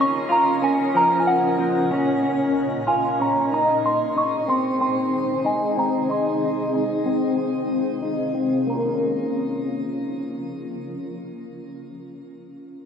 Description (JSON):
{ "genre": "dream pop", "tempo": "93 BPM", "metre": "4/4", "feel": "straight", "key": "Bb minor", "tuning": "A4 = 440 Hz", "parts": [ { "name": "soft synth bell", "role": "melody", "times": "0.0-12.0 s", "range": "Gb5 to Db6", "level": "-22 LUFS", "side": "right 2 dB", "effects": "chorus, low-pass filter, shimmer reverb, digital delay" }, { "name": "granular cloud pad", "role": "sustained chords", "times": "0.0-12.0 s", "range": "Bb2 to Ab5", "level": "-26 LUFS", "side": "right 1 dB", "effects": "built-in reverb, low-pass filter, shimmer reverb" }, { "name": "electric guitar through a small old amp", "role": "arpeggios", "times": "0.0-12.1 s", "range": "F3 to Bb4", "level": "-24 LUFS", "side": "left 2 dB", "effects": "ensemble chorus, low-pass filter, shimmer reverb, digital delay" } ], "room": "wet plate reverb, RT60 3.0 s", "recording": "bright 1980s-style digital production", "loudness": "-19 LUFS", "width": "side -7 dB against mid", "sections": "0.0-8.7 A section; 8.7-11.3 B section", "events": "filter sweep 0.0-8.7", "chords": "0.0 Bbm; 0.9 Gbmaj7/Bb; 3.5 Ab; 6.1 Fm7; 8.7 Bbm" }